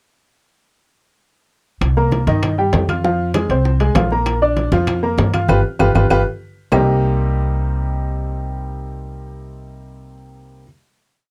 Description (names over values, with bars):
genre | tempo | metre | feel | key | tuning
latin, salsa | 196 BPM | 4/4 | straight | C minor | A4 = 440 Hz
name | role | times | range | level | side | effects
upright bass | bass | 1.8-10.6 s | G1 to G2 | -21 LUFS | equal | none
bongos | percussion | 1.8-6.8 s | none | -28 LUFS | equal | none
claves | percussion | 1.8-6.8 s | none | -32 LUFS | equal | none
congas | percussion | 1.8-6.8 s | none | -27 LUFS | equal | none
timbales | percussion | 1.8-6.8 s | none | -28 LUFS | equal | none
bright baby grand piano | accompaniment | 2.0-10.6 s | C3 to F6 | -21 LUFS | equal | none
room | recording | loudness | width
light reverb | cassette tape | -17 LUFS | mono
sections
1.8-6.7 montuno (vamp); 6.7-9.2 final chord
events
band accent 5.5-6.7; drum fill 6.1-6.7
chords
1.8 Cm7; 3.0 Fm; 4.3 Bb; 5.5 G7; 6.7 Cm7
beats
| 1.82 2.12 2.43 2.73 | 3.04 3.35 3.65 3.96 | 4.26 4.57 4.88 5.18 | 5.49 5.80 6.11 6.41 | 6.72 7.03 7.34 7.64 | 7.95 8.26 8.56 8.87